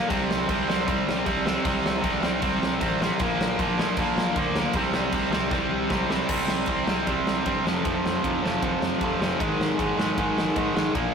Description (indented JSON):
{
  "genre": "punk rock",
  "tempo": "155 BPM",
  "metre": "4/4",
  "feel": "straight",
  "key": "C minor",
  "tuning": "A4 = 442 Hz",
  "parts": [
    { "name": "tight distorted guitar", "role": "riff", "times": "0.0-11.1 s", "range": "F2 to C4", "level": "-24 LUFS", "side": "right 1 dB", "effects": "distortion" },
    { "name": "growling picked electric bass", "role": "bass", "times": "0.1-11.1 s", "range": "F1 to Ab2", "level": "-34 LUFS", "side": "equal", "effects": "overdrive" },
    { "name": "big rock drum kit", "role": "drums", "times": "0.1-11.0 s", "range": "crash cymbal, kick drum, ride cymbal, snare drum", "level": "-28 LUFS", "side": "equal", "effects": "none" }
  ],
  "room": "moderate stone room reverb, RT60 1.1 s",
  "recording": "rough rehearsal-room recording, tube saturation",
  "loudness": "-22 LUFS",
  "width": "side -6 dB against mid",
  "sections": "0.0-6.3 A section; 6.3-11.1 B section",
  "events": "drum fill 5.5-6.3",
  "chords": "0.1 C5; 3.2 Bb; 4.8 C5; 7.7 F5; 9.4 Ab5"
}